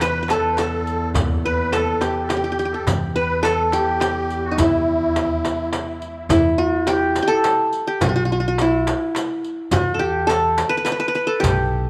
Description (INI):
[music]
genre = Arabic maqam ensemble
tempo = 105 BPM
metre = 3/4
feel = straight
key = E maqam nahawand, E maqam bayati from 6.3 s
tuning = A4 = 440 Hz
[part]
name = qanun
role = melody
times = 0.0-11.9 s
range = D#4 to B4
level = -22 LUFS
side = equal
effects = none
[part]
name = musette accordion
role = second line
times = 0.0-5.7 s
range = E4 to B4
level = -28 LUFS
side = equal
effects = tape echo
[part]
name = upright bass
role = bass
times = 0.0-11.9 s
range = B1 to E2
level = -28 LUFS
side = equal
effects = none
[part]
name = warm double bass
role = drone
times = 0.0-6.4 s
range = E2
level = -31 LUFS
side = equal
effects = none
[part]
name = darbuka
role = percussion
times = 0.0-11.8 s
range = none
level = -31 LUFS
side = equal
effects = none
[part]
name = frame drum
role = percussion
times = 0.0-11.6 s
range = none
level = -30 LUFS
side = equal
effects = none
[part]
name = riq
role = percussion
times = 0.0-11.6 s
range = none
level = -36 LUFS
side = equal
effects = none
[sound]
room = moderate echo chamber reverb, RT60 2.1 s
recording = none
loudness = -20 LUFS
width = mono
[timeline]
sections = 0.0-6.3 A section; 6.3-11.9 B section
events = none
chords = none